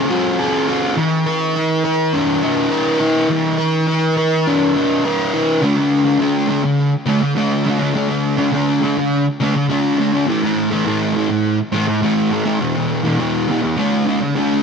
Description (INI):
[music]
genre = rock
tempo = 103 BPM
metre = 4/4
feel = straight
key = D major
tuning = A4 = 440 Hz
[part]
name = fuzz guitar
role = solo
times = 0.0-14.6 s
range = E2 to B4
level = -15 LUFS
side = equal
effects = distortion, lush chorus, digital delay
[sound]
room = light reverb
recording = dark, warm production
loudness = -15 LUFS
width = side -6 dB against mid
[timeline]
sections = 0.0-5.6 A section; 5.6-14.6 A section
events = none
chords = 0.0 Dmaj7 (rootless); 1.0 E5; 5.6 D5; 10.3 A5; 12.6 E5; 13.8 D5